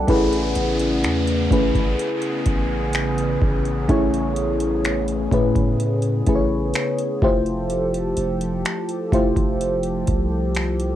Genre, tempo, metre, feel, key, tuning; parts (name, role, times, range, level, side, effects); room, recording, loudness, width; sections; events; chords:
contemporary R&B; 63 BPM; 4/4; straight; A4 = 440 Hz
mellow FM electric piano; accompaniment; 0.0-11.0 s; A3 to F#5; -21 LUFS; left 1 dB; chorus, phaser, cassette tape
chorused pulse-width pad; sustained chords; 0.0-11.0 s; C#3 to A4; -27 LUFS; right 1 dB; cassette tape
long sustained 808-style bass; bass; 0.0-11.0 s; F1 to A2; -25 LUFS; equal
booming analog drum machine; drums; 0.1-11.0 s; finger snaps, hi-hat, kick drum; -22 LUFS; equal; cassette tape
downlifter; sound effects; 0.1-7.7 s; -33 LUFS; right 1 dB
light reverb; home recording on cassette; -18 LUFS; side -12 dB against mid
0.1-11.0 A section
0.1 Amaj9; 7.2 Fmaj9